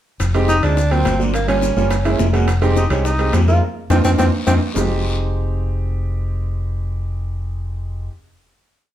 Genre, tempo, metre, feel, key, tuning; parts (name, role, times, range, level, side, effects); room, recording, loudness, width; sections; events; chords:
Afro-Cuban jazz; 210 BPM; 4/4; straight; F minor; A4 = 441 Hz
fingered electric bass; bass; 0.2-8.1 s; F1 to F2; -18 LUFS; equal
bongos; percussion; 0.2-4.8 s; -28 LUFS; left 6 dB
congas; percussion; 0.2-4.8 s; -26 LUFS; equal
guiro; percussion; 0.2-4.8 s; -34 LUFS; left 4 dB
maracas; percussion; 0.2-4.8 s; -35 LUFS; left 5 dB
timbales; percussion; 0.2-4.8 s; -27 LUFS; right 3 dB
warm grand piano; accompaniment; 0.3-8.1 s; F#3 to Bb4; -22 LUFS; right 2 dB
breathy tenor saxophone; melody; 0.5-4.5 s; Bb3 to F4; -21 LUFS; right 1 dB
wet studio reverb, RT60 0.8 s; heard from further back in the room; -16 LUFS; side -12 dB against mid
0.2-4.8 A section; 4.8-7.0 final chord
band accent 3.6-4.8; drum fill 3.9-4.8
0.2 Fm9; 0.8 D7alt; 1.3 Gm7b5; 1.9 Gb9; 2.5 Fm9